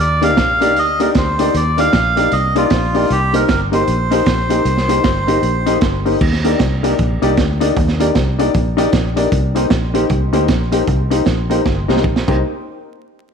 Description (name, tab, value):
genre	ska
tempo	154 BPM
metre	4/4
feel	swing 61% on 8ths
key	C minor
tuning	A4 = 439 Hz
part	melodica	melody	0.0-5.8 s	F4 to F5	-17 LUFS	right 1 dB	slapback echo
part	fingered electric bass	bass	0.0-12.4 s	G1 to Eb2	-19 LUFS	equal	none
part	hollow-body jazz guitar	accompaniment	0.2-12.4 s	Bb3 to G4	-22 LUFS	right 8 dB	none
part	dark upright piano	stabs	0.2-12.4 s	Eb4 to D5	-19 LUFS	left 9 dB	none
part	crunchy breakbeat drum kit	drums	0.2-12.4 s	crash cymbal, hi-hat, kick drum, snare drum	-19 LUFS	right 2 dB	none
room	moderate echo chamber reverb, RT60 1.7 s, small room ambience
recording	1960s-style stereo with parts hard left and right, vinyl crackle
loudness	-13 LUFS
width	side -6 dB against mid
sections	0.0-6.2 A section; 6.2-12.4 B section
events	drum fill 11.7-12.4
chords	0.0 Ebmaj7; 3.1 Cm7; 6.2 Ebmaj7; 9.3 Cm7; 12.4 N.C.